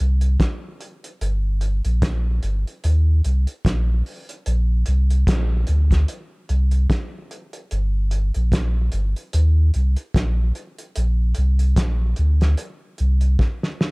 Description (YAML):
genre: roots reggae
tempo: 74 BPM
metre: 4/4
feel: swing 57% on 16ths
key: unclear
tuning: A4 = 440 Hz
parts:
  - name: warm sub bass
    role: bass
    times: 0.0-13.4 s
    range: G1 to Eb2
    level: -17 LUFS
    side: equal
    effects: none
  - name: cloth-damped thuddy drum kit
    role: drums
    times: 0.2-13.9 s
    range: hi-hat, kick drum, snare drum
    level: -23 LUFS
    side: equal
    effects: none
room: little or no reverb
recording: dark, warm production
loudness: -18 LUFS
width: side -31 dB against mid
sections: 0.0-13.9 A section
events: drum fill 13.4-13.9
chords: none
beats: 0.40 | 1.21 2.02 2.84 3.65 | 4.46 5.27 6.08 6.90 | 7.71 8.52 9.33 10.14 | 10.96 11.77 12.58 13.39